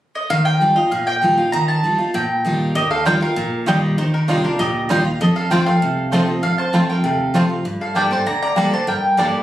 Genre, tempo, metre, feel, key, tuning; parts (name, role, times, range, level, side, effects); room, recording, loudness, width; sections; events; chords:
bluegrass; 196 BPM; 4/4; straight; A4 = 440 Hz
mandolin; melody; 0.2-9.4 s; Bb4 to Bb5; -20 LUFS; equal; slapback echo
picked steel-string acoustic guitar; accompaniment; 0.3-9.4 s; F2 to A4; -18 LUFS; equal
lap resonator guitar; second line; 2.8-9.4 s; D4 to D5; -27 LUFS; left 1 dB
upright bass; bass; 2.8-9.3 s; Bb1 to G2; -29 LUFS; equal
bluegrass banjo; melody; 3.1-9.3 s; G3 to F4; -26 LUFS; right 3 dB
mandolin; stabs; 3.1-9.3 s; Bb3 to A5; -22 LUFS; right 2 dB
moderate studio reverb, RT60 0.6 s; recorded on a phone in the room, studio reverb; -15 LUFS; side -13 dB against mid
0.3-2.8 A section; 2.8-9.4 B section
0.3 Ebadd9; 5.2 F; 7.7 Gmadd9